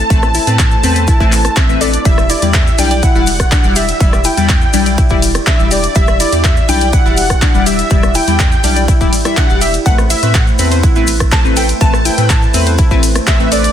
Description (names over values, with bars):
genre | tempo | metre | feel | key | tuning
progressive house | 123 BPM | 4/4 | straight | A dorian | A4 = 440 Hz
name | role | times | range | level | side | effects
wide unison lead | melody | 0.0-13.7 s | D5 to A5 | -19 LUFS | equal | sidechain pumping, dub echo
glassy wavetable pluck | second line | 0.0-13.7 s | D5 to A5 | -24 LUFS | equal | chorus, sidechain pumping, dub echo
warm analog pad | sustained chords | 0.0-13.7 s | A3 to D5 | -24 LUFS | right 4 dB | chorus, sidechain pumping
round analog bass | bass | 0.0-13.7 s | D1 to A2 | -17 LUFS | equal | sidechain pumping
analog pluck | arpeggios | 0.1-13.6 s | G3 to D5 | -22 LUFS | equal | chorus, sidechain pumping, dub echo
chorused polysynth | stabs | 0.1-13.6 s | G3 to E5 | -18 LUFS | left 5 dB | phaser, sidechain pumping, dub echo
big-room dance drum kit | drums | 0.1-13.7 s | handclaps, hi-hat, ride cymbal, rim click | -18 LUFS | equal | none
electronic kick drum | drums | 0.1-13.4 s | none | -12 LUFS | equal | none
cabasa | percussion | 0.1-13.7 s | none | -24 LUFS | left 6 dB | none
room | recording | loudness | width
little or no reverb | dense, heavily limited modern master | -9 LUFS | side -10 dB against mid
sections
0.0-13.7 A section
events
none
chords
0.0 Amadd9; 2.1 Em7; 9.9 Amadd9